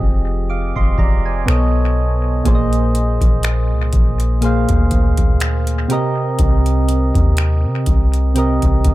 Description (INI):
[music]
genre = contemporary R&B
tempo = 61 BPM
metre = 4/4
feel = swing 54% on 16ths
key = unclear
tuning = A4 = 439 Hz
[part]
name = soft electric-piano-like synth keys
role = accompaniment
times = 0.0-8.9 s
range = Bb2 to D6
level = -19 LUFS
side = right 1 dB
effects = chorus
[part]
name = soft 808-style bass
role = bass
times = 0.0-8.9 s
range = F1 to C3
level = -16 LUFS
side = equal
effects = none
[part]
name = booming analog drum machine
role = drums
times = 0.0-8.9 s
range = finger snaps, hi-hat, kick drum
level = -17 LUFS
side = equal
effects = none
[sound]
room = little or no reverb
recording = echo-heavy mix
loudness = -14 LUFS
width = side -17 dB against mid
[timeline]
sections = 0.0-8.9 A section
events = none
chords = 0.0 Fm9; 1.5 B9; 2.5 Bb7sus4; 5.9 Cm7